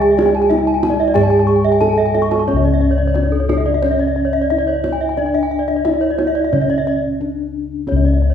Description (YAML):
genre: Balinese gamelan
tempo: 89 BPM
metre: 4/4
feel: straight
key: C# pelog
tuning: A4 = 441 Hz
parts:
  - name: gamelan-type bronze metallophone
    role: melody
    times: 0.0-8.3 s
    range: C#4 to A4-40c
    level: -18 LUFS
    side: right 1 dB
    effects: none
  - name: gamelan-type bronze metallophone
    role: accompaniment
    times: 0.0-2.5 s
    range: G#3-45c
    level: -23 LUFS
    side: left 2 dB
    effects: none
  - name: gamelan-type bronze metallophone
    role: arpeggios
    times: 0.0-8.3 s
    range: C#5 to C#6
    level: -21 LUFS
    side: left 5 dB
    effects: none
  - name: gamelan-type bronze metallophone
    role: arpeggios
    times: 0.0-8.3 s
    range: A4-40c to C#6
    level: -21 LUFS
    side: right 5 dB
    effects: none
  - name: gamelan-type bossed gongs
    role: bass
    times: 0.0-8.3 s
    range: C#2 to G#4-45c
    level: -19 LUFS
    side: left 2 dB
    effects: none
  - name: kendang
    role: percussion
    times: 0.0-8.1 s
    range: none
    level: -25 LUFS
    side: right 1 dB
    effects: none
room: wet large studio reverb, RT60 1.3 s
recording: band playing live in one room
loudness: -14 LUFS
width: side -8 dB against mid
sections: 0.0-2.5 A section; 2.5-8.3 B section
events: drum fill 2.0-2.5; break 6.9-7.9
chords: none